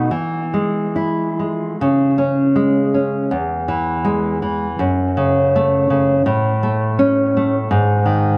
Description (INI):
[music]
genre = romantic piece for solo classical guitar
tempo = 70-85 BPM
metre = 2/4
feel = rubato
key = C# minor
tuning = A4 = 439 Hz
[part]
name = nylon-string guitar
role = solo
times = 0.0-8.4 s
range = E2 to E4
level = -18 LUFS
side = equal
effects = analog delay
[sound]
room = wet studio reverb, RT60 0.5 s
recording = cassette tape, lossy compression artefacts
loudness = -18 LUFS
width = mono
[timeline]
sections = 0.0-1.8 A section; 1.8-8.4 B section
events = none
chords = 0.1 E; 1.8 C#5; 3.3 E; 4.8 F#m; 6.3 A; 7.7 G#5